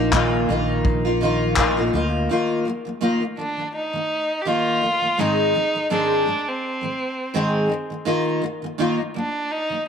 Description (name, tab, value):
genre	acoustic pop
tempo	83 BPM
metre	4/4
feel	swing 55% on 16ths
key	unclear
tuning	A4 = 440 Hz
part	picked steel-string acoustic guitar	accompaniment	0.0-9.9 s	Ab2 to Ab4	-21 LUFS	equal	double-tracked left and right
part	mellow fretless electric bass	bass	0.0-2.3 s	Bb1 to D2	-24 LUFS	equal	ensemble chorus
part	vintage brush drum kit	drums	0.1-1.8 s	handclaps, kick drum	-23 LUFS	left 2 dB	none
part	rich violin	melody	3.4-9.9 s	C4 to G4	-22 LUFS	right 1 dB	none
room	moderate spring reverb, RT60 2.4 s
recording	1960s-style stereo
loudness	-19 LUFS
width	side -7 dB against mid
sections	0.0-2.3 A section; 2.3-9.9 B section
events	none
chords	0.0 Bbsus4; 2.3 Ebsus2; 5.2 Ab; 7.7 Ebsus2